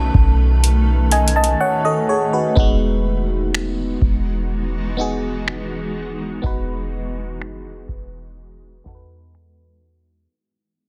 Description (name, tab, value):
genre	contemporary R&B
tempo	62 BPM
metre	4/4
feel	straight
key	E major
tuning	A4 = 443 Hz
part	FM electric piano	accompaniment	0.0-10.3 s	G#3 to A5	-24 LUFS	equal	chorus, phaser
part	granular cloud pad	sustained chords	0.0-10.3 s	D#3 to B4	-30 LUFS	equal	built-in reverb, sidechain pumping
part	clean 808-style bass	bass	0.0-10.3 s	E1 to E2	-22 LUFS	equal	none
part	synth chime	texture	0.0-3.0 s	A5	-34 LUFS	equal	ensemble chorus, tremolo, delay
part	booming analog drum machine	drums	0.1-9.6 s	finger snaps, hi-hat, kick drum	-20 LUFS	equal	soft clipping on snare
room	little or no reverb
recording	dense, heavily limited modern master, low-pass filter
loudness	-19 LUFS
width	mono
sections	0.0-2.6 A section; 2.6-10.3 B section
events	silent gap 1.6-2.6; fade-out 2.6-10.3; filter sweep 2.6-10.3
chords	0.0 B7; 2.6 Emaj9